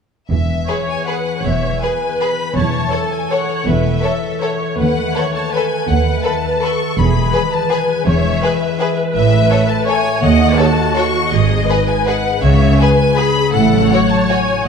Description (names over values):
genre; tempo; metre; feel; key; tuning
classical, orchestral ballroom waltz; 163 BPM; 3/4; uneven beats, rubato; E major; A4 = 440 Hz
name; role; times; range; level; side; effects
clear studio violin section; melody; 0.3-14.7 s; D#5 to C#6; -21 LUFS; left 6 dB; none
concert harp; arpeggios; 0.3-14.7 s; G#2 to C#6; -20 LUFS; left 6 dB; none
rich symphonic cello section; bass; 0.3-13.8 s; D#2 to C#3; -20 LUFS; right 5 dB; none
warm symphonic double bass section; bass; 0.3-13.8 s; E1 to D#2; -19 LUFS; right 4 dB; none
clear symphonic violin section; second line; 0.7-14.4 s; F#4 to C#5; -23 LUFS; left 2 dB; none
rich symphonic viola section; accompaniment; 0.7-14.7 s; F#4 to D#5; -20 LUFS; right 1 dB; none
room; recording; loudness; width
wet scoring stage reverb, RT60 1.6 s; dark, warm production; -13 LUFS; side -6 dB against mid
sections
0.3-14.7 A section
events
none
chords
0.3 E; 2.6 F#m7/E; 4.8 B7/D#; 7.0 E; 9.2 A; 10.2 D#m7b5; 11.3 G#m; 12.4 C#m7; 13.5 F#m/A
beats
| 0.30 0.68 1.08 | 1.44 1.82 2.21 | 2.56 2.93 3.31 | 3.67 4.04 4.42 | 4.79 5.16 5.53 | 5.89 6.25 6.62 | 6.98 7.34 7.71 | 8.06 8.43 8.80 | 9.15 9.51 9.88 | 10.23 10.59 10.97 | 11.33 11.69 12.07 | 12.43 12.79 13.18 | 13.54 13.91 14.30 | 14.66